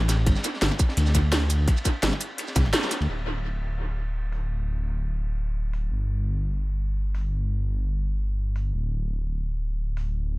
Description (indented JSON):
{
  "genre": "liquid drum and bass",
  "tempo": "170 BPM",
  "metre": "4/4",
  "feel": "swing 53% on 16ths",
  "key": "unclear",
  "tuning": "A4 = 441 Hz",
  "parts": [
    { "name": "dark detuned saw bass", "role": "bass", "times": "0.0-10.4 s", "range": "D1 to D2", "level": "-25 LUFS", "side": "equal", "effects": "none" },
    { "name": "drum and bass drum kit", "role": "drums", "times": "0.0-10.0 s", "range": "crash cymbal, hi-hat, shaker, snare drum", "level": "-28 LUFS", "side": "equal", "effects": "low-pass filter on hats, low-pass filter on perc, low-pass filter on snare, low-pass filter on cymbals, dub echo" },
    { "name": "crunchy breakbeat drum kit", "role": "drums", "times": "0.1-3.1 s", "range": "ride cymbal, snare drum", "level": "-34 LUFS", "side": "equal", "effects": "high-pass filter on cymbals, high-pass filter on snare, high-pass filter on room, dub echo" },
    { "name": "electronic kick drum", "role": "drums", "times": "0.3-2.6 s", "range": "none", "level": "-22 LUFS", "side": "equal", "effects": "none" }
  ],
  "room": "light reverb, small room reverb",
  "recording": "echo-heavy mix",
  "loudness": "-24 LUFS",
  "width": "side -21 dB against mid",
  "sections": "0.0-3.1 A section; 3.1-10.4 B section",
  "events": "band accent 2.7",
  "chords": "none",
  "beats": "| 0.27 0.62 0.97 1.32 | 1.68 2.03 2.38 2.74 | 3.09 3.44 3.79 4.15 | 4.50 4.85 5.21 5.56 | 5.91 6.26 6.62 6.97 | 7.32 7.68 8.03 8.38 | 8.74 9.09 9.44 9.79 | 10.15"
}